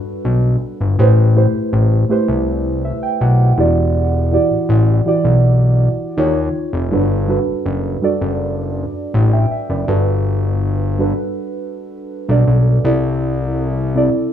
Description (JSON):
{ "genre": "contemporary R&B", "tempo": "81 BPM", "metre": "4/4", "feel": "straight", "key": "G major", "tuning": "A4 = 440 Hz", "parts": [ { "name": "muted felt-like synth keys", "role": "accompaniment", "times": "0.0-14.3 s", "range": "C3 to G5", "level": "-18 LUFS", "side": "right 2 dB", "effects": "chorus, plate reverb" }, { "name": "fat analog bass", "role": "bass", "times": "0.2-14.1 s", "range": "E1 to Eb2", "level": "-14 LUFS", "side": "left 1 dB", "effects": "none" } ], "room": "light reverb", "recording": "rough home demo mix, small room reverb", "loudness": "-13 LUFS", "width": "side -9 dB against mid", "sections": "0.0-9.9 A section; 9.9-14.3 B section", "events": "synth keys fill 2.5-4.0", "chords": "0.0 Gmaj9; 1.0 Am9; 3.6 Em9; 6.2 Eb9; 6.9 Gmaj9; 12.8 C6", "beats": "0.25 | 0.99 1.73 2.47 3.21 | 3.95 4.69 5.43 6.17 | 6.92 7.66 8.40 9.14 | 9.88 10.62 11.36 12.10 | 12.84 13.58 14.32" }